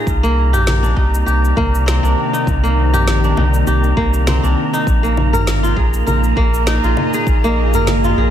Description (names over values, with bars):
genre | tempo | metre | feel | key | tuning
organic downtempo | 100 BPM | 4/4 | swing 56% on 16ths | C minor | A4 = 435 Hz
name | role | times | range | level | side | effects
bowed-like drone | sustained chords | 0.0-8.3 s | Bb2 to Eb5 | -21 LUFS | equal | built-in reverb, sidechain pumping
kora | arpeggios | 0.0-8.3 s | Bb3 to Bb4 | -19 LUFS | equal | dub echo
wind-like tuned noise texture | texture | 0.0-8.3 s | Bb5 | -25 LUFS | right 2 dB | built-in reverb
warm sub bass | bass | 0.1-8.3 s | Ab1 to C2 | -15 LUFS | equal | sidechain pumping
electronic kick drum | drums | 0.1-7.4 s | none | -19 LUFS | equal | none
electronic shaker, snare drum and congas | drums | 0.1-8.1 s | none | -24 LUFS | left 1 dB | dub echo
darbuka | percussion | 0.5-8.3 s | none | -26 LUFS | right 1 dB | none
room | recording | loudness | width
light reverb, digital ambience | echo-heavy mix | -13 LUFS | side -10 dB against mid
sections
0.0-8.3 A section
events
none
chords
0.1 Cm9; 4.9 Bb7sus4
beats
| 0.07 0.67 1.27 1.87 | 2.47 3.07 3.67 4.27 | 4.87 5.47 6.07 6.67 | 7.27 7.87